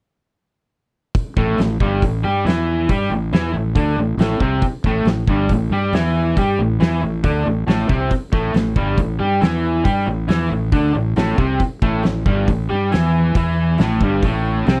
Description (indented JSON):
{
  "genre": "blues rock power trio and southern rock",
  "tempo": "138 BPM",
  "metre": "4/4",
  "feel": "straight",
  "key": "A minor",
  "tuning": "A4 = 442 Hz",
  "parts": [
    { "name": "oversized low-tuned drum kit", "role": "drums", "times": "1.1-14.8 s", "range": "hi-hat, kick drum, snare drum", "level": "-22 LUFS", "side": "equal", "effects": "none" },
    { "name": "raw garage guitar", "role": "riff", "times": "1.4-14.8 s", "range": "G2 to G4", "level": "-22 LUFS", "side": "equal", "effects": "overdrive" },
    { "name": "fuzz fingered electric bass", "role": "bass", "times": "1.4-14.8 s", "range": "G1 to G2", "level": "-23 LUFS", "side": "equal", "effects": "overdrive" }
  ],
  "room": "little or no reverb",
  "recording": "dry, close 1970s-style studio recording",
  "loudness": "-18 LUFS",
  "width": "mono",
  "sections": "1.2-14.8 A section",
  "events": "none",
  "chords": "1.2 Am",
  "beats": "| 1.16 1.59 2.03 2.46 | 2.90 3.33 3.77 4.20 | 4.64 5.07 5.50 5.94 | 6.38 6.81 7.25 7.68 | 8.12 8.55 8.99 9.42 | 9.86 10.30 10.73 11.17 | 11.61 12.04 12.48 12.92 | 13.36 13.80 14.23 14.67"
}